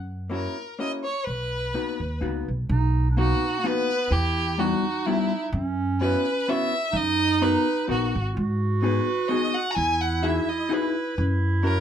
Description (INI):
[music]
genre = musette waltz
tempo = 127 BPM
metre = 3/4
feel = swing 54% on 8ths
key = B major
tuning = A4 = 441 Hz
[part]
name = upright bass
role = bass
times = 0.0-11.8 s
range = G#1 to G#2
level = -25 LUFS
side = equal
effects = none
[part]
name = clear violin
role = melody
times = 0.3-11.8 s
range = E4 to A#5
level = -27 LUFS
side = left 1 dB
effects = none
[part]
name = vintage hollow-body jazz guitar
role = accompaniment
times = 0.3-11.8 s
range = G3 to A#4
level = -27 LUFS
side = left 4 dB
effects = none
[part]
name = breathy clarinet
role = second line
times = 2.7-11.8 s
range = A#3 to F#4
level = -28 LUFS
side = right 6 dB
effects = none
[sound]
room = moderate studio reverb, RT60 0.5 s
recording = dark, warm production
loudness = -22 LUFS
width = side -9 dB against mid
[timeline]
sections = 0.0-2.7 A section; 2.7-11.8 A section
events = none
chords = 0.0 F#7; 1.3 Bmaj7; 4.1 Emadd9; 5.5 F#7sus4; 6.9 Bmaj7/F#; 8.4 G#m7; 9.8 Emaj9; 11.2 F#7